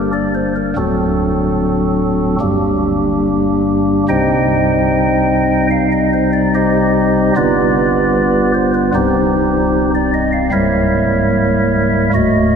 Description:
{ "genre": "classical, chorale-style piece for pipe organ", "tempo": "74 BPM", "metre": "4/4", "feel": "rubato", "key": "G minor", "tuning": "A4 = 438 Hz", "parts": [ { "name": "chamber organ, stopped flute", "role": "solo", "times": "0.0-12.6 s", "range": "C1 to G5", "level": "-12 LUFS", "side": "equal", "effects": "none" } ], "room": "wet cathedral reverb, RT60 4.3 s", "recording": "minimal, uncompressed stereo recording", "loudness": "-12 LUFS", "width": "side -6 dB against mid", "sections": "0.0-12.6 A section", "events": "none", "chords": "0.0 Gm; 0.8 D7; 2.4 Gm; 4.1 Cm; 7.3 G7; 8.9 Cm; 10.5 C#dim7" }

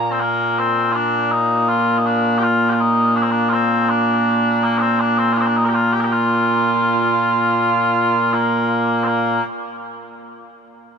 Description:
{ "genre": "scottish traditional, Scottish pipe music", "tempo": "81 BPM", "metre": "3/4", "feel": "straight", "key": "Bb major", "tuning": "A4 = 440 Hz", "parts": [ { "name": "mellow small bagpipes", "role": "solo", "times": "0.0-9.4 s", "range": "Bb2 to Bb5", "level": "-15 LUFS", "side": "equal", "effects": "none" } ], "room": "moderate huge ambient reverb, RT60 4.7 s", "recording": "none", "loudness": "-15 LUFS", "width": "side -6 dB against mid", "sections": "0.2-9.1 A section; 9.1-11.0 B section", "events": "none", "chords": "none" }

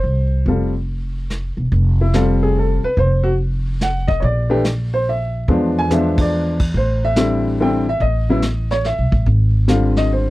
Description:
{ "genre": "jazz piano trio", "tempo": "143 BPM", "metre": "3/4", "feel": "swing 66% on 8ths", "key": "F major", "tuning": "A4 = 444 Hz", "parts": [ { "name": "warm upright piano", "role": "melody", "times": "0.0-10.3 s", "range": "C#3 to G#5", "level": "-18 LUFS", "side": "left 1 dB", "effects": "none" }, { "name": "upright bass", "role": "bass", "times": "0.0-10.3 s", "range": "E1 to E2", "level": "-18 LUFS", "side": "equal", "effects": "none" }, { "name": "vintage brush drum kit", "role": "drums", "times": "0.5-10.3 s", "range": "brushed snare drum, crash cymbal, hi-hat, kick drum, snare drum, toms", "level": "-22 LUFS", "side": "equal", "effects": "none" } ], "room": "little or no reverb", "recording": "dry, close 1970s-style studio recording", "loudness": "-15 LUFS", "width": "side -18 dB against mid", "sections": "0.0-1.7 A section; 1.7-10.3 B section", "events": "drum fill 5.9-6.3; band accent 6.1", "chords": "0.0 F5; 1.7 F; 4.2 Bb; 5.5 E7b9; 6.7 Am7; 8.0 A; 9.3 Abmaj7" }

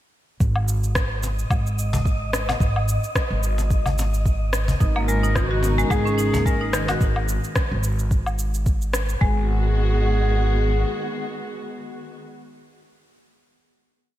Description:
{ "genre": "organic downtempo", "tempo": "109 BPM", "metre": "4/4", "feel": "swing 56% on 16ths", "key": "G# minor", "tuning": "A4 = 441 Hz", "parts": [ { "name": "upright bass", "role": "bass", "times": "0.4-10.8 s", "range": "G#1", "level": "-22 LUFS", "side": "equal", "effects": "none" }, { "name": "electronic kick drum", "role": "drums", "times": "0.4-9.4 s", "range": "none", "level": "-21 LUFS", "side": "equal", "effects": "none" }, { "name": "electronic shaker, woodblock and rim click", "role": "drums", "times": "0.4-9.2 s", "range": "none", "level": "-28 LUFS", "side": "equal", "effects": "gated reverb" }, { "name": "wind-like tuned noise texture", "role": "texture", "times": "1.2-7.0 s", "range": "D#5", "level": "-34 LUFS", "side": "equal", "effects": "built-in reverb" }, { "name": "cajon", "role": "percussion", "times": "1.2-7.0 s", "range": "none", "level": "-29 LUFS", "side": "left 2 dB", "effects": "none" }, { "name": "dark studio string section", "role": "sustained chords", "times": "4.8-12.2 s", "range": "C#3 to A#4", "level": "-30 LUFS", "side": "left 1 dB", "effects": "sidechain pumping" }, { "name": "marimba with hard mallets", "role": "arpeggios", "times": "4.8-9.5 s", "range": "D#3 to F#4", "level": "-27 LUFS", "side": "left 1 dB", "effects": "ping-pong delay" }, { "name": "mellow clarinet", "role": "melody", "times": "5.1-12.2 s", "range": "F#4 to A#4", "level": "-28 LUFS", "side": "right 1 dB", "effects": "ping-pong delay" } ], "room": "light reverb, small room ambience", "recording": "bright 1980s-style digital production", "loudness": "-19 LUFS", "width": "side -13 dB against mid", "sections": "0.4-9.2 groove; 9.2-11.4 final chord", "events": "none", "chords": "0.4 G#5; 4.8 Bmaj9/G# (rootless); 7.0 N.C.; 9.2 G#m7" }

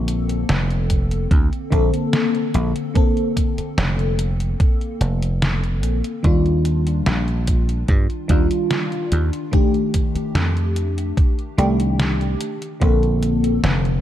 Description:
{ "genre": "vaporwave", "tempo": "73 BPM", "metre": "4/4", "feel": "straight", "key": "Bb major", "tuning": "A4 = 441 Hz", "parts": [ { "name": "FM electric piano with soft pad layer", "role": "accompaniment", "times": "0.0-14.0 s", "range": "D3 to A4", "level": "-22 LUFS", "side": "left 2 dB", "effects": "phaser, wide subtle chorus, analog delay" }, { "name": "dry thumbed slap bass", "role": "bass", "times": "0.0-14.0 s", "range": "F1 to G2", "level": "-20 LUFS", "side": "equal", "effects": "tube saturation" }, { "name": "detuned 8-bit digital drum machine", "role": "drums", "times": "0.1-14.0 s", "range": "hi-hat, snare drum", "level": "-25 LUFS", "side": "equal", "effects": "none" }, { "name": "electronic kick drum", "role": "drums", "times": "0.9-13.0 s", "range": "none", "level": "-18 LUFS", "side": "equal", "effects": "none" } ], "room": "light reverb, digital ambience", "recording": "none", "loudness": "-17 LUFS", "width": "side -12 dB against mid", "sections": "0.0-14.0 A section", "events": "none", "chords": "0.0 Bbmaj9; 6.2 Ebmaj9; 9.5 F13; 12.4 Bbmaj9" }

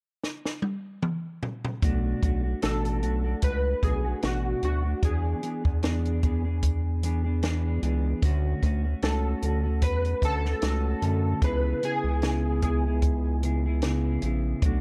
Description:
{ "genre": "indie pop, bedroom pop", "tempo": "75 BPM", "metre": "4/4", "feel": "swing 55% on 16ths", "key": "B dorian", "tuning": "A4 = 440 Hz", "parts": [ { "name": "compact cocktail drum kit", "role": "drums", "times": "0.2-14.8 s", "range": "hi-hat, kick drum, snare drum, toms", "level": "-30 LUFS", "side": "equal", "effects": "none" }, { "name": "mellow electric guitar", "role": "accompaniment", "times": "1.8-14.8 s", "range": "B2 to G#4", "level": "-34 LUFS", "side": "equal", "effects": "lush chorus, warbly pitch drift" }, { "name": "round analog bass", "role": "bass", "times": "1.8-14.8 s", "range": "A1 to F#2", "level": "-29 LUFS", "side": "equal", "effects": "none" }, { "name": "chorused retro synth keys", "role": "melody", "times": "2.6-13.4 s", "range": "F#4 to B4", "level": "-34 LUFS", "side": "equal", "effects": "ensemble chorus" } ], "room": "small room ambience", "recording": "dark, warm production", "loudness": "-27 LUFS", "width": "mono", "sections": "0.0-1.8 A section; 1.8-14.8 B section", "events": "drum fill 0.2-1.8", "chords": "0.0 N.C.; 1.8 Bm7; 5.0 E7; 8.2 Dmaj7; 11.4 C#m7" }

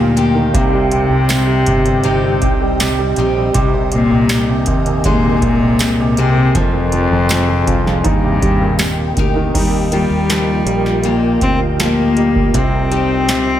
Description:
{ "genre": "pop ballad", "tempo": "80 BPM", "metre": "4/4", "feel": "straight", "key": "Eb major", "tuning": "A4 = 440 Hz", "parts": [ { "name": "dark cello", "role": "melody", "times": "0.0-13.6 s", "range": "F2 to C4", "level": "-16 LUFS", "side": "left 2 dB", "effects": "none" }, { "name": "clear grand piano", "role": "accompaniment", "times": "0.0-13.6 s", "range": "Bb2 to Eb4", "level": "-20 LUFS", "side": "right 4 dB", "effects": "none" }, { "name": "ethereal airy pad", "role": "sustained chords", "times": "0.0-13.6 s", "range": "C4 to C6", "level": "-23 LUFS", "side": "right 1 dB", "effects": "ensemble chorus, built-in reverb" }, { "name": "picked steel-string acoustic guitar", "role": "arpeggios", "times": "0.0-13.6 s", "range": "C3 to Bb4", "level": "-24 LUFS", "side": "left 7 dB", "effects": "none" }, { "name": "fretless electric bass", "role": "bass", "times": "0.0-13.6 s", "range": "F1 to Eb2", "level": "-20 LUFS", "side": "equal", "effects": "none" }, { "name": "booming analog drum machine", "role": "drums", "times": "0.2-13.5 s", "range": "crash cymbal, hi-hat, kick drum, snare drum", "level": "-20 LUFS", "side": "equal", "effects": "none" }, { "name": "tambourine", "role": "percussion", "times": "1.3-9.0 s", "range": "none", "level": "-28 LUFS", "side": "right 9 dB", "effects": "none" } ], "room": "light reverb, studio reverb", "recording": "none", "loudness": "-12 LUFS", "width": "side -11 dB against mid", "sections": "0.0-9.5 A section; 9.5-13.6 B section", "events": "none", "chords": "0.0 Ebadd9; 0.5 Cm; 3.5 Abadd9/C; 6.5 Fm; 8.0 Eb6; 9.5 Ebadd9; 12.5 Cm" }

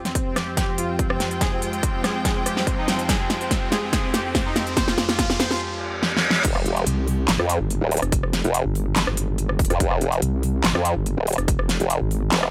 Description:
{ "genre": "heavy wobble dubstep", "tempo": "143 BPM", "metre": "4/4", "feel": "half-time", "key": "F minor", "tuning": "A4 = 437 Hz", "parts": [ { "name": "evolving wavetable pad", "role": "sustained chords", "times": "0.0-6.4 s", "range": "F2 to G4", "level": "-34 LUFS", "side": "equal", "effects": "phaser, built-in reverb, sidechain pumping" }, { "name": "riser and reverse cymbal", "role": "sound effects", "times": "1.7-6.4 s", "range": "none", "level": "-32 LUFS", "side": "equal", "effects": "none" }, { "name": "clear studio string section", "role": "texture", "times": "0.0-5.6 s", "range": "Ab3 to G5", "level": "-34 LUFS", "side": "equal", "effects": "sidechain pumping" }, { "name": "soft supersaw", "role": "melody", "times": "0.1-5.6 s", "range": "C4 to C5", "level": "-31 LUFS", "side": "equal", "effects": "digital delay" }, { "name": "big-room dance drum kit", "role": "drums", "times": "0.1-12.5 s", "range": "crash cymbal, handclaps, hi-hat, rim click, snare drum", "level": "-26 LUFS", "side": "equal", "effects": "none" }, { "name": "electronic kick drum", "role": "drums", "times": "0.2-11.6 s", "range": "none", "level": "-27 LUFS", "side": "equal", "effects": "none" }, { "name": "formant-sweep wobble bass", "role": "bass", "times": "6.4-12.5 s", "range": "Eb1 to F2", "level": "-23 LUFS", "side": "equal", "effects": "chorus, overdrive" }, { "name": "vowel-sweep wobble bass", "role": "bass", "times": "6.9-12.3 s", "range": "F1 to C2", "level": "-25 LUFS", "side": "equal", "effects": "chorus, overdrive" } ], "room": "light reverb", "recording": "none", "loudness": "-22 LUFS", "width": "mono", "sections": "0.0-6.4 A section; 6.4-12.5 B section", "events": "build-up 0.0-6.4; drum fill 0.0-5.6, 6.0-6.4; riser 1.7-5.6; reverse cymbal 5.6-6.4; drop 6.4-12.5", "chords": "0.0 Fmadd9; 6.4 Fsus2" }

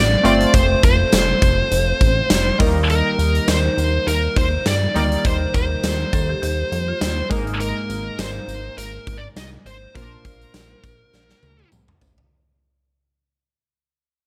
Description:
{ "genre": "1980s-style pop", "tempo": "102 BPM", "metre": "4/4", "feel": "swing 55% on 16ths", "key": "Bb major", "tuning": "A4 = 440 Hz", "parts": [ { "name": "high-gain lead guitar", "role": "melody", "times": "0.0-11.7 s", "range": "Bb4 to Eb5", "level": "-24 LUFS", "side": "equal", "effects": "distortion, delay" }, { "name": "chorused retro synth keys", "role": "accompaniment", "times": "0.0-12.3 s", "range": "Ab2 to C5", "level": "-27 LUFS", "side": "equal", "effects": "none" }, { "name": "chorused synth bass", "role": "bass", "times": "0.0-12.2 s", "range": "F1 to G2", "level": "-24 LUFS", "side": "equal", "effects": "none" }, { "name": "big rock drum kit", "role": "drums", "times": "0.2-12.3 s", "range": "hi-hat, kick drum, snare drum, tambourine, toms", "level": "-23 LUFS", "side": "equal", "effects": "gated reverb" }, { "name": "tambourine", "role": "percussion", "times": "0.3-12.2 s", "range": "none", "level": "-39 LUFS", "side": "equal", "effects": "none" }, { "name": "marimba with hard mallets", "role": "second line", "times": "6.1-7.4 s", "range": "Eb4 to A4", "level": "-36 LUFS", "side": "equal", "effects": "delay" } ], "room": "light reverb, studio reverb", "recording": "none", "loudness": "-18 LUFS", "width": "mono", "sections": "0.0-12.3 A section", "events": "fade-out 1.0-12.3; drum fill 11.1-12.3", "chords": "0.0 F; 2.6 Eb; 7.3 Absus2; 10.0 Bbadd9" }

